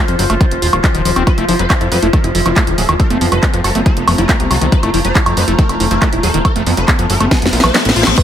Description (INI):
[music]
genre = psychedelic trance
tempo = 139 BPM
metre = 4/4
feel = straight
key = F major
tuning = A4 = 440 Hz
[part]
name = overtone-sweeping drone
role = sustained chords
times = 0.0-8.2 s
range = F3 to A4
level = -22 LUFS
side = left 1 dB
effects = chorus, built-in reverb, sidechain pumping
[part]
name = screaming distorted acid line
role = riff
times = 0.0-8.2 s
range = Eb3 to F4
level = -20 LUFS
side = moving between left 6 dB and right 5 dB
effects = distortion, chorus, auto-pan, sidechain pumping, ping-pong delay
[part]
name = airy breathy pad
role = texture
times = 0.0-8.2 s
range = F4 to C6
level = -24 LUFS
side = equal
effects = chorus, sidechain pumping
[part]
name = fat analog bass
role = bass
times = 0.1-8.1 s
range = Eb1 to F2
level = -17 LUFS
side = equal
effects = none
[part]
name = techno drum kit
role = drums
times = 0.1-8.2 s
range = crash cymbal, handclaps, hi-hat, snare drum, woodblock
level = -16 LUFS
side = right 1 dB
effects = none
[part]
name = electronic kick drum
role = drums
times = 0.4-8.2 s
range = none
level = -14 LUFS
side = equal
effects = none
[part]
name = swarming rave lead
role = melody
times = 1.3-8.2 s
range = C4 to Db5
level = -20 LUFS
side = left 1 dB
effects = chorus, phaser, sidechain pumping, dub echo
[part]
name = reverse cymbal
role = sound effects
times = 7.5-8.2 s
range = none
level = -20 LUFS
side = left 7 dB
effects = none
[sound]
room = light reverb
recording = none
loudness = -11 LUFS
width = side -10 dB against mid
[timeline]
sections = 0.0-8.2 A section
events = drum fill 7.3-8.2; reverse cymbal 7.5-8.2; kick drops out 7.7-8.2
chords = 0.0 F5